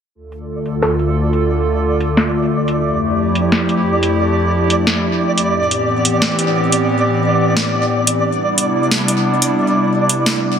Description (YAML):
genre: IDM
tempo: 89 BPM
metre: 4/4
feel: straight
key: D dorian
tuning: A4 = 441 Hz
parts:
  - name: hollow soft pad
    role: sustained chords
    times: 0.1-10.6 s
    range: D2 to A4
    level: -16 LUFS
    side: equal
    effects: chorus
  - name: flickering grainy texture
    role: texture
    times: 0.6-10.6 s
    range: D5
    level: -20 LUFS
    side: right 1 dB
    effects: built-in reverb
  - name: booming analog drum machine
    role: drums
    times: 0.3-10.4 s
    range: hi-hat, snare drum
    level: -17 LUFS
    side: equal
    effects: overdrive, low-pass filter on hats, low-pass filter on snare, low-pass filter on room, digital delay
room: moderate plate reverb, RT60 1.7 s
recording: dense, heavily limited modern master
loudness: -13 LUFS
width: side -8 dB against mid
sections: 0.2-10.6 A section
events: filter sweep on drum 0.2-10.6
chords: 0.2 Dm; 2.8 Fmaj7; 5.5 Am7; 8.2 Cmaj7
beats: | 0.15 0.82 1.50 2.17 | 2.85 3.52 4.20 4.87 | 5.54 6.22 6.89 7.57 | 8.24 8.91 9.59 10.26